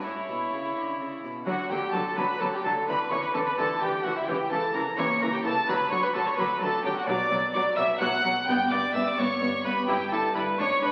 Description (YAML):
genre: classical, baroque-style concerto movement with solo episodes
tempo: 86 BPM (dotted quarters)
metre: 6/8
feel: straight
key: D major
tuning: A4 = 440 Hz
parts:
  - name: dark violin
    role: melody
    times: 0.0-10.9 s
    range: E4 to G5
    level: -32 LUFS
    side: equal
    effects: none
  - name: warm chamber violin section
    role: melody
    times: 0.0-10.9 s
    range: C#5 to G6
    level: -33 LUFS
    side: equal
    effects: none
  - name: warm chamber violin section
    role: second line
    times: 0.0-10.9 s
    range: E4 to G5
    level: -35 LUFS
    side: equal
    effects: none
  - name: dark chamber viola section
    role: accompaniment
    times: 0.0-10.9 s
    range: E3 to E4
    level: -33 LUFS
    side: equal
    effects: none
  - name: harpsichord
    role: accompaniment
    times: 0.0-10.9 s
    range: G2 to C#5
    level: -38 LUFS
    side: equal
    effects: none
  - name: dark chamber cello section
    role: bass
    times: 0.0-10.9 s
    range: G2 to D3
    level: -42 LUFS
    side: equal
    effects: none
  - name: rich chamber double bass section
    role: bass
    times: 1.5-10.9 s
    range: G1 to D2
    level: -47 LUFS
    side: equal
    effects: none
room: wet recital hall reverb, RT60 1.5 s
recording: very old 78 rpm record, vinyl crackle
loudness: -27 LUFS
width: mono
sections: 0.0-1.5 A section; 1.5-10.9 B section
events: none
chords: 0.0 A; 1.5 D; 2.9 Em7/D; 4.3 C#dim7; 5.7 D; 7.1 Bm; 8.5 G; 9.9 Em/G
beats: | 0.03 0.75 | 1.47 2.17 | 2.88 3.58 | 4.28 4.98 | 5.68 6.38 | 7.08 7.78 | 8.48 9.18 | 9.88 10.59